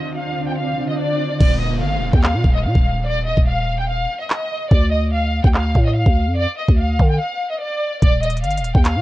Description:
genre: hip hop, drill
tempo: 145 BPM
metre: 4/4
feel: half-time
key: D phrygian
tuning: A4 = 445 Hz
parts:
  - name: rich studio violin section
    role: melody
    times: 0.0-9.0 s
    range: D5 to G5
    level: -23 LUFS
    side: equal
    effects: low-pass filter, tape echo
  - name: granular cloud pad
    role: sustained chords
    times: 0.0-1.4 s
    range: D3 to F4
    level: -26 LUFS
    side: equal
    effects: built-in reverb, low-pass filter
  - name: swell and downlifter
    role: sound effects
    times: 0.3-4.7 s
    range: none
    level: -30 LUFS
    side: equal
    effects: none
  - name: growling 808-style bass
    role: bass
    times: 1.4-9.0 s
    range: Eb1 to D3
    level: -19 LUFS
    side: equal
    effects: none
  - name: drill drum kit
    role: drums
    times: 1.4-8.9 s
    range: crash cymbal, handclaps, hi-hat, kick drum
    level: -15 LUFS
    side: equal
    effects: vintage 12-bit sampler grit
room: little or no reverb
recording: worn, warbling old tape, cassette tape, warbly pitch drift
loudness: -16 LUFS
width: side -16 dB against mid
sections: 0.0-1.4 A section; 1.4-9.0 B section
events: swell 0.3-1.4; hi-hats muted 1.4-8.0; break 7.2-8.0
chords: 0.0 Dm7; 1.4 N.C.; 4.7 Dm; 8.0 Eb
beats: 0.17 0.58 0.99 | 1.41 1.82 2.23 2.65 | 3.06 3.48 3.89 4.30 | 4.72 5.13 5.54 5.96 | 6.37 6.79 7.20 7.61 | 8.03 8.44 8.86

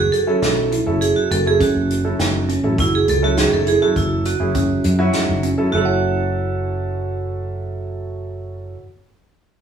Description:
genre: progressive instrumental, band music in an uneven meter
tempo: 102 BPM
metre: 5/4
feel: straight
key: F# dorian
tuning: A4 = 439 Hz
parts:
  - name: vibraphone with hard mallets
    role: melody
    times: 0.0-8.7 s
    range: E4 to A4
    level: -21 LUFS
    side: right 5 dB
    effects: none
  - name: bell-like tine electric piano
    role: arpeggios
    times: 0.0-8.9 s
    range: C#4 to F#5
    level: -24 LUFS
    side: right 2 dB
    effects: none
  - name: fingered electric bass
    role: bass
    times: 0.0-8.7 s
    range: F#1 to F#2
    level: -22 LUFS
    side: equal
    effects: none
  - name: unplugged drum kit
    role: drums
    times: 0.1-5.6 s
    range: hi-hat, kick drum, snare drum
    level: -24 LUFS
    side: equal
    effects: none
  - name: warm grand piano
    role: accompaniment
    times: 0.3-8.8 s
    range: F#3 to A4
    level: -24 LUFS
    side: left 1 dB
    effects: none
room: moderate large studio reverb, RT60 0.9 s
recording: band playing live in one room, small room ambience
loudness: -16 LUFS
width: side -8 dB against mid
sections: 0.0-5.7 A section; 5.7-8.7 B section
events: none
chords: 0.0 F#m7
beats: 0.43 1.02 1.61 2.20 | 2.79 3.38 3.96 4.55 5.14 | 5.73 6.32 6.90 7.49 8.08

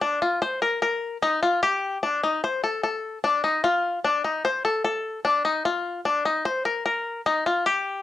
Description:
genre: progressive instrumental, progressive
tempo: 149 BPM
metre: 5/4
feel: straight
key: F mixolydian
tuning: A4 = 440 Hz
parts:
  - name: bluegrass banjo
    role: solo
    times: 0.0-8.0 s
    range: D4 to C5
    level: -22 LUFS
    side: left 3 dB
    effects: cassette tape
room: moderate studio reverb, RT60 0.6 s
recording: home recording on cassette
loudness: -22 LUFS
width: side -13 dB against mid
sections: 0.0-8.0 A section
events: none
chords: none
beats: 0.02 | 0.42 0.82 1.23 1.63 2.03 | 2.43 2.83 3.24 3.64 4.04 | 4.45 4.85 5.25 5.65 6.06 | 6.46 6.86 7.27 7.67

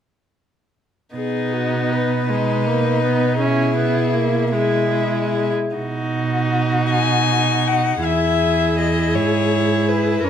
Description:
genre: classical, slow romantic movement for string quartet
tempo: 46-55 BPM (dotted quarters)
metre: 6/8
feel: rubato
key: B major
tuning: A4 = 442 Hz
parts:
  - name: rich violin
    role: melody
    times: 1.2-10.2 s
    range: F#4 to G#5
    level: -22 LUFS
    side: left 10 dB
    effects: none
  - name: rich violin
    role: second line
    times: 1.2-10.3 s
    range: D#4 to A#4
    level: -23 LUFS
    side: left 3 dB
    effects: none
  - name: clear viola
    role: accompaniment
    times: 1.2-10.3 s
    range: G#3 to E4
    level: -22 LUFS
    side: right 2 dB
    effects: none
  - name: rich cello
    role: bass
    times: 1.2-10.3 s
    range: E2 to B2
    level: -22 LUFS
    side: right 5 dB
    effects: none
room: moderate recital hall reverb, RT60 1.7 s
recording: close, detailed microphones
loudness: -16 LUFS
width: side -8 dB against mid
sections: 1.1-5.8 A section; 5.8-10.3 B section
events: none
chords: 1.1 B; 3.4 E/B; 5.8 B; 8.0 E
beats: | 1.15 2.30 | 3.40 4.53 | 5.76 6.91 | 8.04 9.15 | 10.24

